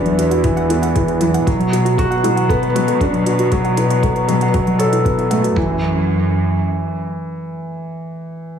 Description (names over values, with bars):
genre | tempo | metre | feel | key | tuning
piano and strings electronica | 117 BPM | 4/4 | straight | unclear | A4 = 440 Hz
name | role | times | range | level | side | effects
felt-muted upright piano | riff | 0.0-8.6 s | E3 to A4 | -18 LUFS | equal | tape echo
muted studio cello section | bass | 0.0-7.1 s | E2 to B2 | -20 LUFS | equal | sidechain pumping
soft round pluck | arpeggios | 0.1-5.8 s | F#3 to F#5 | -22 LUFS | equal | chorus, sidechain pumping, tape echo
electronic hi-hat | drums | 0.1-5.5 s | none | -32 LUFS | right 5 dB | overdrive
lo-fi sampler-style drum kit | drums | 0.4-5.7 s | kick drum, toms | -21 LUFS | equal | none
room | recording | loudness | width
light reverb, studio ambience | studio reverb | -14 LUFS | side -8 dB against mid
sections
0.0-5.6 A section; 5.6-8.6 B section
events
filter sweep on cello section 0.0-5.6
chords
0.0 E7(no3); 1.5 Bm7; 5.6 Esus2/F#